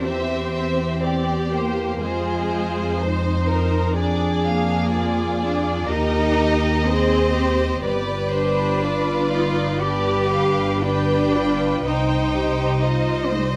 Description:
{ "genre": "classical, slow romantic movement for string orchestra", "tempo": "61 BPM", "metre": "4/4", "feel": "rubato", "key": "unclear", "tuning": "A4 = 439 Hz", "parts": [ { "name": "rich studio violin section", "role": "melody", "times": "0.0-13.6 s", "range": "C5 to G5", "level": "-32 LUFS", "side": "equal", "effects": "none" }, { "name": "rich studio violin section", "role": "second line", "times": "0.0-13.6 s", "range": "G4 to C5", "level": "-28 LUFS", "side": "equal", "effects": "none" }, { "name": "rich studio viola section", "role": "accompaniment", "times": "0.0-13.6 s", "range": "D4 to Ab4", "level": "-30 LUFS", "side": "equal", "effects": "none" }, { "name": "clear studio cello section", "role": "bass", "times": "0.0-13.6 s", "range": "G3 to G4", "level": "-26 LUFS", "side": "equal", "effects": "none" }, { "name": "warm studio double bass section", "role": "bass", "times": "0.0-13.6 s", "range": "G1 to F2", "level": "-26 LUFS", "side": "equal", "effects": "none" } ], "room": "moderate scoring stage reverb, RT60 1.9 s", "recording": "none", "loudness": "-21 LUFS", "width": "mono", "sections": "0.0-13.6 A section", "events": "none", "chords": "0.0 C7/E; 2.0 Fm; 4.0 Ddim/F; 5.9 Eb; 7.8 G7; 11.8 Cm" }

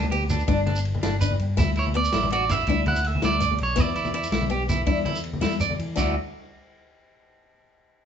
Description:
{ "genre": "highlife guitar band", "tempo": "109 BPM (dotted quarters)", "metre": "12/8", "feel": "straight", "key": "D major", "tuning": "A4 = 440 Hz", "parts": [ { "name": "electric guitar at the edge of break-up", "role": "melody", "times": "0.0-5.6 s", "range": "B4 to F#5", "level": "-27 LUFS", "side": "right 5 dB", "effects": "none" }, { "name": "picked acoustic archtop guitar", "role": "accompaniment", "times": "0.0-6.1 s", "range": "C#3 to E4", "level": "-31 LUFS", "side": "left 6 dB", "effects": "none" }, { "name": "electric guitar at the edge of break-up", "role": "arpeggios", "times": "0.0-6.1 s", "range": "D4 to D5", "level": "-29 LUFS", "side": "right 3 dB", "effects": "none" }, { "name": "fingered electric bass", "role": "bass", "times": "0.0-6.1 s", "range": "G1 to E3", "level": "-27 LUFS", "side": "equal", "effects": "none" }, { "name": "congas", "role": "percussion", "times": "0.0-6.1 s", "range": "none", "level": "-29 LUFS", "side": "left 5 dB", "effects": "none" }, { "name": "vintage drum kit", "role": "drums", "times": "0.1-6.1 s", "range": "crash cymbal, kick drum, ride cymbal, snare drum", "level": "-31 LUFS", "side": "equal", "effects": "none" }, { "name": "shekere", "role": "percussion", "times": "0.3-6.1 s", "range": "none", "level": "-29 LUFS", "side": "right 2 dB", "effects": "none" } ], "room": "moderate large studio reverb, RT60 1.1 s", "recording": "band playing live in one room, nothing above 7.9 kHz", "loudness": "-21 LUFS", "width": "side -8 dB against mid", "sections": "0.0-6.0 A section; 6.0-8.1 B section", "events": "none", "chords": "0.0 G; 1.6 Dsus2; 3.8 E7(no3); 6.0 Dadd9" }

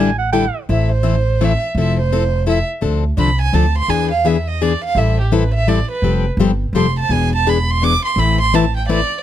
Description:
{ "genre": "acoustic string swing (jazz manouche)", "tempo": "169 BPM", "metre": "3/4", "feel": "swing 63% on 8ths", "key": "A minor", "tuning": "A4 = 440 Hz", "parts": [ { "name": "warm clarinet", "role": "second line", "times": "0.0-0.6 s", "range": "F#5 to G#5", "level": "-20 LUFS", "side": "right 6 dB", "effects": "none" }, { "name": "picked plugged-in steel-string acoustic guitar", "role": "accompaniment", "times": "0.0-9.0 s", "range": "D3 to B4", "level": "-18 LUFS", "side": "left 6 dB", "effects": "none" }, { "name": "upright bass", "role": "bass", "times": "0.0-9.0 s", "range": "E1 to E2", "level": "-17 LUFS", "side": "right 1 dB", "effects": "none" }, { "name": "warm violin", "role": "melody", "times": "0.7-9.2 s", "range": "G4 to D6", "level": "-20 LUFS", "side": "right 4 dB", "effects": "none" } ], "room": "little or no reverb", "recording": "close, detailed microphones", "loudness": "-14 LUFS", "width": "side -11 dB against mid", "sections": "0.7-9.2 A section", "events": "violin solo 0.7-9.2", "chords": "0.0 A7sus4; 0.7 Am; 1.8 Fmaj7; 2.8 Dm7; 3.9 E7; 5.0 Am7; 6.0 Fadd9; 7.1 E7; 8.2 Amadd9" }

